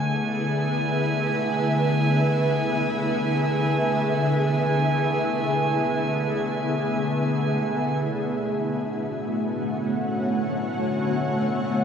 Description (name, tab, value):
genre	ambient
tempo	free time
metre	none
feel	none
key	unclear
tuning	A4 = 436 Hz
part	ethereal airy pad	sustained chords	0.0-11.8 s	D3 to F#5	-23 LUFS	left 1 dB	ensemble chorus, built-in reverb, tremolo, shimmer reverb
part	organ-like drone	drone	0.0-11.8 s	D3 to A3	-30 LUFS	equal	ensemble chorus, built-in reverb, phaser
part	drifting glass-harmonics texture	texture	0.0-11.8 s	G#5	-29 LUFS	right 4 dB	chorus, built-in reverb, shimmer reverb
part	muted felt-like synth keys	arpeggios	8.1-11.8 s	A3 to F#4	-38 LUFS	equal	none
room	wet huge ambient reverb, RT60 7.9 s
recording	none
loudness	-22 LUFS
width	side -7 dB against mid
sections	0.0-8.0 A section; 8.0-11.8 B section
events	fade-in on synth texture 8.0-11.8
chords	0.0 E7/D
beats	free time